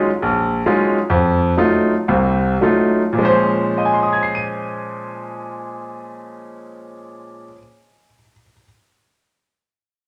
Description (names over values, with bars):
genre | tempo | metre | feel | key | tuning
jazz | 101-142 BPM | 4/4 | swing 67% on 8ths | Bb minor | A4 = 441 Hz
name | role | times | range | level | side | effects
bright grand piano | accompaniment | 0.0-8.6 s | Bb1 to Eb7 | -19 LUFS | equal | none
room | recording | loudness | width
wet large studio reverb, RT60 1.1 s | none | -17 LUFS | mono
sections
0.0-3.2 A section; 3.2-7.9 B section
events
slowing down 0.0-3.2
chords
0.0 Ebm11; 1.1 F7b9; 3.2 Bbm7